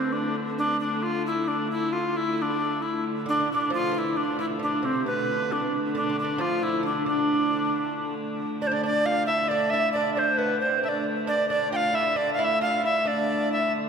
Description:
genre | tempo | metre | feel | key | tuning
medieval dance | 90 BPM (dotted quarters) | 6/8 | straight | D dorian | A4 = 440 Hz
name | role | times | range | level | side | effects
bright reedy tenor recorder | melody | 0.0-13.7 s | C4 to G5 | -24 LUFS | equal | none
rich hurdy-gurdy | drone | 0.0-13.9 s | D3 to A3 | -33 LUFS | equal | none
lute | second line | 3.3-13.7 s | B2 to F4 | -31 LUFS | right 2 dB | none
room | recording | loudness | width
wet cathedral reverb, RT60 5.4 s | recorded in a church or concert hall | -23 LUFS | side -6 dB against mid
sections
0.0-8.4 A section; 8.4-13.9 A section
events
none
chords
none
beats
| 0.36 1.03 | 1.70 2.37 | 3.04 3.72 | 4.39 5.06 | 5.73 6.40 | 7.07 7.73 | 8.40 9.07 | 9.74 10.40 | 11.07 11.74 | 12.40 13.07 | 13.73

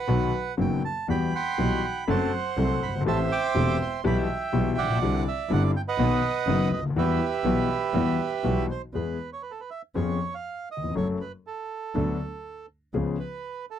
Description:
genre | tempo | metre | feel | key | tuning
tango | 121 BPM | 4/4 | rubato | E minor, E major from 8.9 s | A4 = 441 Hz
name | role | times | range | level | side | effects
bandoneon | melody | 0.0-13.8 s | G4 to D6 | -29 LUFS | right 6 dB | none
warm concert grand piano | accompaniment | 0.1-13.2 s | E1 to A4 | -27 LUFS | left 4 dB | none
clear double bass | bass | 0.1-13.1 s | E1 to E#2 | -29 LUFS | right 2 dB | none
room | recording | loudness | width
little or no reverb | dry, close 1970s-style studio recording | -24 LUFS | side -10 dB against mid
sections
0.0-8.9 A section; 8.9-13.8 B section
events
none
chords
0.1 B; 1.1 Emadd9; 2.1 F#dim; 3.1 Am7; 4.0 Em/B; 5.0 Cadd9; 6.0 B; 7.0 Emadd9; 8.9 E; 10.0 C#7/E#; 11.0 F#m; 12.0 D6; 12.9 C#7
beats
0.08 0.58 | 1.08 1.58 2.07 2.57 | 3.06 3.55 4.04 4.53 | 5.02 5.51 5.99 6.47 | 6.96 7.45 7.94 8.44 | 8.94 9.45 9.96 10.46 | 10.96 11.46 11.95 12.45 | 12.95 13.44

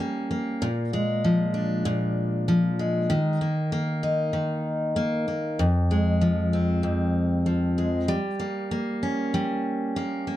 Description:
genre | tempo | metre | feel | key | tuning
pop | 96 BPM | 4/4 | straight | F minor | A4 = 440 Hz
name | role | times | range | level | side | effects
picked steel-string acoustic guitar | solo | 0.0-10.4 s | F2 to Eb4 | -23 LUFS | equal | none
room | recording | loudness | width
light reverb | dark, warm production | -23 LUFS | side -14 dB against mid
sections
0.0-10.4 A section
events
none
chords
0.0 Gdim; 0.6 Bb7; 3.1 Eb5; 5.6 Fm; 8.1 Gdim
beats
0.00 | 0.62 1.24 1.86 2.48 | 3.11 3.73 4.35 4.97 | 5.59 6.21 6.84 7.46 | 8.08 8.70 9.33 9.95

